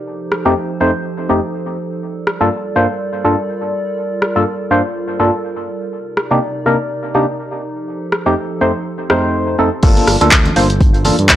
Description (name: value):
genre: deep house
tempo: 123 BPM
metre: 4/4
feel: swing 56% on 16ths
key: G minor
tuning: A4 = 439 Hz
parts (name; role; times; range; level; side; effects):
- warbly tape-like pad; sustained chords; 0.0-11.4 s; C3 to D5; -23 LUFS; right 1 dB; chorus, built-in reverb, sidechain pumping
- punchy analog drum machine; drums; 0.3-11.4 s; crash cymbal, handclaps, hi-hat, rim click; -15 LUFS; equal; none
- percussive organ stab; stabs; 0.5-11.2 s; F2 to C5; -15 LUFS; equal; wide subtle chorus, sidechain pumping, tape echo
- smooth synth bass; bass; 9.8-11.4 s; G1 to G2; -16 LUFS; equal; sidechain pumping
- electronic kick drum; drums; 9.8-11.4 s; none; -12 LUFS; equal; none
- warm soul drum kit; drums; 9.8-11.4 s; hi-hat, snare drum; -30 LUFS; left 1 dB; none
- congas; percussion; 10.5-11.2 s; none; -22 LUFS; left 1 dB; none
room: light reverb, small room reverb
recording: dry, gritty hardware recording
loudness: -14 LUFS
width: side -12 dB against mid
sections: 0.0-9.8 A section; 9.8-11.4 B section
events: drop 9.8-11.4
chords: 0.0 F9; 2.0 Gm9; 5.9 Cm9; 7.6 F9; 9.8 Gm9